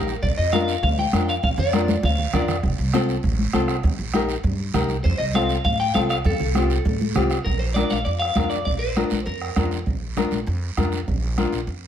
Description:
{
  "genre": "latin, cumbia",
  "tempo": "199 BPM",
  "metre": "4/4",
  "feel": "straight",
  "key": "Bb major",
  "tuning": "A4 = 439 Hz",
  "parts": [
    { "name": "clean electric guitar", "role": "melody", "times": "0.0-2.6, 5.0-9.7 s", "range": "A4 to G5", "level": "-25 LUFS", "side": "left 2 dB", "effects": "spring reverb, slapback echo" },
    { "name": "nylon-string guitar", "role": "accompaniment", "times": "0.0-11.6 s", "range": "C4 to Bb4", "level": "-25 LUFS", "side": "left 4 dB", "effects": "none" },
    { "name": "upright bass", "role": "bass", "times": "0.0-11.9 s", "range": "F1 to A2", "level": "-25 LUFS", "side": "right 1 dB", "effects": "none" },
    { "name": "guiro", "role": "percussion", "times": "0.1-11.9 s", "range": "none", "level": "-36 LUFS", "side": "right 8 dB", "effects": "none" },
    { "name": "bombo", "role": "percussion", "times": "0.2-11.5 s", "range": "none", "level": "-26 LUFS", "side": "right 2 dB", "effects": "none" },
    { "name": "congas", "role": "percussion", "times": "0.5-11.5 s", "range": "none", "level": "-26 LUFS", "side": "equal", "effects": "none" }
  ],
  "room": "light reverb",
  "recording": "none",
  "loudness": "-19 LUFS",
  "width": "side -9 dB against mid",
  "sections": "0.0-7.5 A section; 7.5-11.9 B section",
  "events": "drum fill 1.7-2.6",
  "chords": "0.2 Bb; 2.6 F; 3.8 Eb; 5.0 F; 7.5 Bb"
}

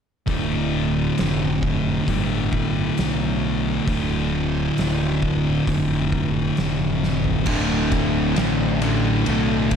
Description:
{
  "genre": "stoner and doom metal",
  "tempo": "67 BPM",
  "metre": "4/4",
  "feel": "straight",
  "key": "D dorian",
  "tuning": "A4 = 444 Hz",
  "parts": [
    { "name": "thick fuzz guitar", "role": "riff", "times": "0.3-9.8 s", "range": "D2 to D3", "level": "-23 LUFS", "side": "left 9 dB", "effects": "distortion" },
    { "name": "thick fuzz guitar", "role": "riff", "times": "0.3-9.8 s", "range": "D2 to D3", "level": "-24 LUFS", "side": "right 8 dB", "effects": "distortion" },
    { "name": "fuzz fingered electric bass", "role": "bass", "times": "0.3-9.8 s", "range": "D1 to B1", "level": "-27 LUFS", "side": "equal", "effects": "overdrive" },
    { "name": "oversized low-tuned drum kit", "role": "drums", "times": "0.3-9.8 s", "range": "crash cymbal, hi-hat, kick drum, ride cymbal, snare drum, toms", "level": "-27 LUFS", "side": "equal", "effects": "none" },
    { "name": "fuzz guitar", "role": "riff", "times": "7.5-9.8 s", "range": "D2 to D3", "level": "-25 LUFS", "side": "equal", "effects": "distortion" }
  ],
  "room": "light reverb",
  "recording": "none",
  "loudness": "-19 LUFS",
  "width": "side -7 dB against mid",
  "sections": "0.3-7.5 A section; 7.5-9.8 B section",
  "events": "drum fill 7.0-7.5",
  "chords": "0.3 Dm; 7.5 D5"
}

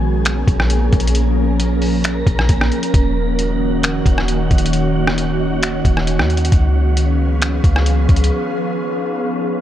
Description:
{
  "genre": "hip hop, atmospheric cloud-rap",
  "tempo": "134 BPM",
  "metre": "4/4",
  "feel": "half-time",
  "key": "unclear",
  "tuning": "A4 = 444 Hz",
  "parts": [
    { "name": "ethereal airy pad", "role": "sustained chords", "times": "0.0-9.6 s", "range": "D#3 to A#4", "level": "-20 LUFS", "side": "equal", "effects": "ensemble chorus, built-in reverb, sidechain pumping" },
    { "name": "clean 808-style bass", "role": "bass", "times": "0.0-8.3 s", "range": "D#1 to D#2", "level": "-17 LUFS", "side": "equal", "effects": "none" },
    { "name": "wind-like tuned noise texture", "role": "texture", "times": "0.0-9.6 s", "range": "C#4 to A#5", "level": "-26 LUFS", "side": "equal", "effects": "built-in reverb" },
    { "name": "trip hop sampler-style drum kit", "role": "drums", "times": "0.3-8.3 s", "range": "finger snaps, hi-hat, kick drum, rim click", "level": "-17 LUFS", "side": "equal", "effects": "none" }
  ],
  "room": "little or no reverb",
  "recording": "none",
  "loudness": "-14 LUFS",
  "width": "side -12 dB against mid",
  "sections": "0.0-9.6 A section",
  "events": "break 8.3-9.6",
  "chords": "0.0 A#m7; 2.9 D#m7; 6.5 C#7"
}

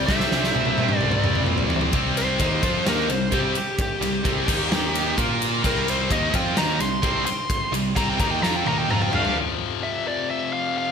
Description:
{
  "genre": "hard rock",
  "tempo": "129 BPM",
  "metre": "4/4",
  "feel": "straight",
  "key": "unclear",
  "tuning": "A4 = 441 Hz",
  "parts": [
    { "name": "bluesy overdriven lead guitar", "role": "melody", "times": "0.0-10.9 s", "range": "G4 to C6", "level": "-26 LUFS", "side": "equal", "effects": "distortion, slapback echo, tape echo" },
    { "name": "high-gain lead guitar", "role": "second line", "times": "0.0-1.4 s", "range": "C5", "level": "-33 LUFS", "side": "right 3 dB", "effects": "distortion" },
    { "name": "high-gain distorted guitar", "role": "riff", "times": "0.0-9.4 s", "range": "C3 to Bb4", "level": "-30 LUFS", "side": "right 1 dB", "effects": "distortion, slapback echo" },
    { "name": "tight distorted guitar", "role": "riff", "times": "0.0-10.9 s", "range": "F2 to Bb4", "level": "-27 LUFS", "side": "left 10 dB", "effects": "distortion, slapback echo" },
    { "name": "tight distorted guitar", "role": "riff", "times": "0.0-9.4 s", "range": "C3 to Bb4", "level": "-28 LUFS", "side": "right 10 dB", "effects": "distortion, slapback echo" },
    { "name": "fuzz picked electric bass", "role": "bass", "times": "0.0-9.3 s", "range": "C2 to Bb2", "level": "-29 LUFS", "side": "equal", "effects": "overdrive" },
    { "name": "big rock drum kit", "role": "drums", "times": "0.1-9.4 s", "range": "crash cymbal, kick drum, ride cymbal, snare drum, toms", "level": "-25 LUFS", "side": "equal", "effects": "none" }
  ],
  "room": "moderate lush hall reverb, RT60 1.7 s, studio ambience",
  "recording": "big arena sound",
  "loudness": "-20 LUFS",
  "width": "side -6 dB against mid",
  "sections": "0.0-1.9 A section; 1.9-9.4 B section; 9.4-10.9 A section",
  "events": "drum fill 0.1-1.9, 8.4-9.4; lead electric guitar solo 1.9-9.4",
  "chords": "0.1 C; 1.9 C5; 4.5 Eb5; 5.2 Bb5; 5.6 C5; 9.4 F5"
}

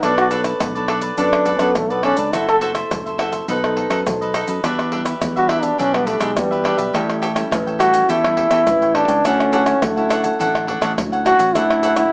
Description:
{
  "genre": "samba and choro",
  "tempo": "104 BPM",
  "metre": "4/4",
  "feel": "straight",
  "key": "D major",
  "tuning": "A4 = 440 Hz",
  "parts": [
    { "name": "clear trombone", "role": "melody", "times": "0.0-12.1 s", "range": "G3 to A4", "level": "-16 LUFS", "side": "equal", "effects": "slapback echo" },
    { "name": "cavaquinho", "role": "accompaniment", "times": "0.0-12.1 s", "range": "D4 to G5", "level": "-22 LUFS", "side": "equal", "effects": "none" },
    { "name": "nylon-string guitar", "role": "accompaniment", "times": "0.0-12.1 s", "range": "A2 to C#5", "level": "-24 LUFS", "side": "equal", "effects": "none" },
    { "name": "fingered electric bass", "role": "bass", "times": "0.0-12.0 s", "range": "F#1 to F#2", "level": "-25 LUFS", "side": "equal", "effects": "none" },
    { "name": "maracas, surdo, pandeiro and tamborim", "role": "percussion", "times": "0.0-12.1 s", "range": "none", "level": "-23 LUFS", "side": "equal", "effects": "none" }
  ],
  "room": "moderate studio reverb, RT60 0.5 s",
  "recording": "small speaker sound",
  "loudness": "-15 LUFS",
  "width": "side -31 dB against mid",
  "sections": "0.0-12.1 A section",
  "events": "trombone solo 0.0-12.1",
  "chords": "0.0 Bm9; 2.3 F#m7b5; 3.5 B7b9; 4.6 Em9; 6.9 A7; 9.2 Dmaj9"
}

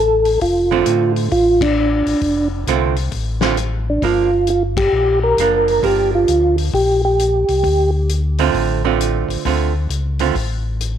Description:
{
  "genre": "soul jazz organ trio",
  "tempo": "133 BPM",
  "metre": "4/4",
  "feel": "swing 65% on 8ths",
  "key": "D minor",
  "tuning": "A4 = 440 Hz",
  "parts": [
    { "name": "percussive tonewheel organ", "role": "melody", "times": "0.0-7.9 s", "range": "D4 to Bb4", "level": "-15 LUFS", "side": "right 1 dB", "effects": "slow rotary speaker, chorus vibrato" },
    { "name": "mellow tonewheel organ", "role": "bass", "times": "0.0-11.0 s", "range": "F1 to A2", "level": "-20 LUFS", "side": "left 1 dB", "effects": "slow rotary speaker" },
    { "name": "warm soul drum kit", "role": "drums", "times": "0.3-10.9 s", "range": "hi-hat, kick drum, ride cymbal, snare drum", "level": "-26 LUFS", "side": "left 6 dB", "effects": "none" },
    { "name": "archtop guitar, miked and amplified", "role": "accompaniment", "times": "0.7-10.3 s", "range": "D3 to F4", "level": "-20 LUFS", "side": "right 12 dB", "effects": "none" }
  ],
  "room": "light reverb, small room ambience",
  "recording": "1960s-style stereo with parts hard left and right",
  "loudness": "-14 LUFS",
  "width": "side -9 dB against mid",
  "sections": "0.0-11.0 A section",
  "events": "band accent 1.5, 4.7",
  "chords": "0.0 Dm7; 4.0 Gm7; 7.6 Dm7"
}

